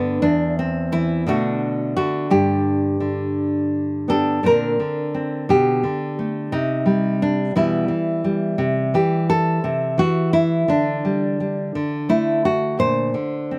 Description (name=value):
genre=folk, solo fingerstyle acoustic guitar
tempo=57 BPM (dotted quarters)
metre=6/8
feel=straight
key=G major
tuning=A4 = 442 Hz
part: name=nylon-string guitar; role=solo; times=0.0-13.6 s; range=E2 to C5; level=-20 LUFS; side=equal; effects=none
room=light reverb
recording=recorded outdoors, with no room sound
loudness=-20 LUFS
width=mono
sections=0.0-4.4 A section; 4.4-13.6 B section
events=none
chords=0.2 N.C.; 1.3 Bm7; 2.3 G; 4.4 Bbadd9; 5.5 Gadd9/B; 6.5 Cm; 7.6 Em/B; 8.6 C; 10.7 Dsus4; 11.7 D5; 12.8 Bbadd9